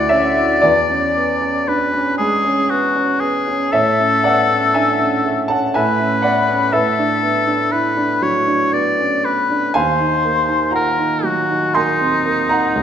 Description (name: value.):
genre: classical, impressionist duo for oboe and grand piano.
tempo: 59 BPM.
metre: 3/4.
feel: rubato.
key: Eb dorian from 9.7 s.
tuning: A4 = 440 Hz.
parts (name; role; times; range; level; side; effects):
warm oboe; melody; 0.0-12.8 s; Eb4 to D5; -17 LUFS; left 3 dB; none.
warm grand piano; accompaniment; 0.0-12.8 s; Db2 to C6; -17 LUFS; right 2 dB; none.
room: wet recital hall reverb, RT60 1.4 s.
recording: none.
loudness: -14 LUFS.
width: side -9 dB against mid.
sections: 0.0-12.8 A section.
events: none.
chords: 0.0 Dmaj9; 0.6 E6; 3.7 A69; 6.7 D69/A; 9.7 Ebmadd9.